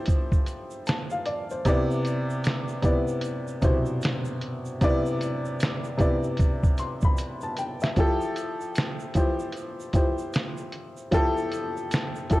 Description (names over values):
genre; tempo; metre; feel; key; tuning
lo-fi hip hop; 76 BPM; 4/4; swing 61% on 16ths; F lydian; A4 = 440 Hz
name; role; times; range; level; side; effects
clear upright piano; accompaniment; 0.0-12.4 s; B2 to C6; -27 LUFS; left 1 dB; cassette tape
lo-fi sampler-style drum kit; drums; 0.1-12.4 s; hi-hat, kick drum, snare drum; -24 LUFS; equal; none
tube shaker; percussion; 0.1-12.4 s; none; -52 LUFS; right 6 dB; none
room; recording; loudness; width
light reverb, studio ambience; cassette tape; -24 LUFS; side -18 dB against mid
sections
0.0-12.4 A section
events
drum fill 7.2-8.0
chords
0.0 Fmaj9; 1.7 Cmaj9; 8.0 Fmaj9